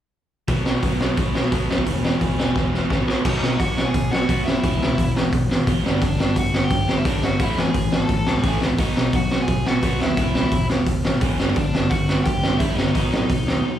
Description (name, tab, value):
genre	punk rock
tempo	173 BPM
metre	4/4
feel	straight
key	unclear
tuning	A4 = 440 Hz
part	crunchy overdriven guitar	riff	0.5-13.8 s	E2 to B3	-28 LUFS	right 11 dB	slapback echo
part	sludgy distorted guitar	riff	0.5-13.8 s	E2 to B3	-27 LUFS	left 8 dB	overdrive, slapback echo
part	modern bright picked electric bass	bass	0.5-13.6 s	E1 to B2	-26 LUFS	equal	none
part	raw garage drum kit	drums	0.5-13.6 s	crash cymbal, hi-hat, kick drum, snare drum	-20 LUFS	equal	none
part	biting lead guitar	melody	3.3-13.8 s	D4 to A5	-27 LUFS	equal	overdrive, slapback echo
room	little or no reverb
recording	live gig heard through the venue's PA, club reverb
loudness	-18 LUFS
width	side -11 dB against mid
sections	0.5-3.3 A section; 3.3-13.8 B section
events	drum fill 2.6-3.3; break 13.6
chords	0.5 B5; 1.9 E5; 3.1 B5; 4.6 E5; 5.8 G5; 7.4 A; 8.8 B; 10.2 E5; 11.4 G5; 12.9 B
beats	| 0.49 0.83 1.18 1.53 | 1.87 2.22 2.56 2.91 | 3.25 3.60 3.95 4.29 | 4.64 4.98 5.33 5.67 | 6.02 6.37 6.71 7.06 | 7.41 7.75 8.10 8.45 | 8.79 9.14 9.48 9.83 | 10.18 10.52 10.87 11.22 | 11.56 11.91 12.26 12.60 | 12.95 13.29 13.64